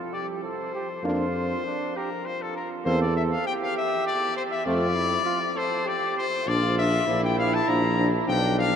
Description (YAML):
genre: classical, brass quintet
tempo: 99 BPM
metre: 3/4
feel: straight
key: unclear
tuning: A4 = 440 Hz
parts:
  - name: warm flugelhorn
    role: second line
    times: 0.0-8.8 s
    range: D4 to A4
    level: -30 LUFS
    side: right 6 dB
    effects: none
  - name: mellow trumpet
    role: melody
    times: 0.1-8.8 s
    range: A4 to Bb5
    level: -27 LUFS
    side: left 5 dB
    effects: none
  - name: warm French horn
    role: accompaniment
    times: 1.0-8.7 s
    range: C4 to D4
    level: -34 LUFS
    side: left 2 dB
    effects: none
  - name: warm trombone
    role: accompaniment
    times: 1.0-8.7 s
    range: F3 to Bb3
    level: -36 LUFS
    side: right 3 dB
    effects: none
  - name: mellow tuba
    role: bass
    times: 1.0-8.8 s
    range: Bb1 to F2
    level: -28 LUFS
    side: equal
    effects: none
room: wet huge ambient reverb, RT60 7.8 s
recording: in a vast, echoing space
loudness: -23 LUFS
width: side -8 dB against mid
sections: 0.0-8.8 A section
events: none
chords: 0.0 F (rootless); 1.0 Bb/F; 2.8 C7/E; 4.7 F; 6.5 Bb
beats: 0.43 | 1.04 1.65 2.25 | 2.85 3.45 4.06 | 4.66 5.26 5.87 | 6.47 7.08 7.68 | 8.28